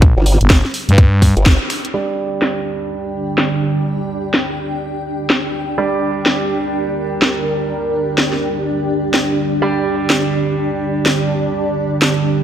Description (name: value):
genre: bass house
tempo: 125 BPM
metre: 4/4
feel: swing 62% on 16ths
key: G minor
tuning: A4 = 441 Hz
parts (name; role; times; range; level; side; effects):
- sweeping resonant pad; sustained chords; 0.0-12.4 s; D3 to D5; -22 LUFS; right 2 dB; chorus, sidechain pumping
- growling FM bass; bass; 0.0-1.3 s; G1 to G2; -12 LUFS; equal; sidechain pumping
- electronic kick drum; drums; 0.0-1.6 s; none; -9 LUFS; equal; overdrive
- garage drum kit; drums; 0.0-12.1 s; finger snaps, hi-hat, snare drum; -18 LUFS; equal; overdrive, low-pass filter on hats, low-pass filter on snare
- formant-sweep wobble bass; bass; 0.2-1.6 s; G1; -13 LUFS; equal; chorus, sidechain pumping
- bright concert grand piano; stabs; 1.9-12.4 s; G3 to D5; -23 LUFS; right 4 dB; sidechain pumping, low-pass filter, dub echo
- granular cloud pad; texture; 2.8-12.4 s; D4 to A5; -21 LUFS; equal; built-in reverb, sidechain pumping
room: moderate lush hall reverb, RT60 2.1 s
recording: dark, warm production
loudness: -14 LUFS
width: side -10 dB against mid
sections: 0.0-1.9 A section; 1.9-12.4 B section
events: drop 0.0-1.9; band accent 1.5; filter sweep on drum 1.9-12.4; filter sweep on grand piano 1.9-12.4; filter sweep on analog synth pad 1.9-12.4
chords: 0.0 G5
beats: | 0.02 0.50 0.98 1.46 | 1.94 2.42 2.90 3.38 | 3.86 4.34 4.82 5.30 | 5.78 6.26 6.74 7.22 | 7.70 8.18 8.66 9.14 | 9.62 10.10 10.58 11.06 | 11.54 12.02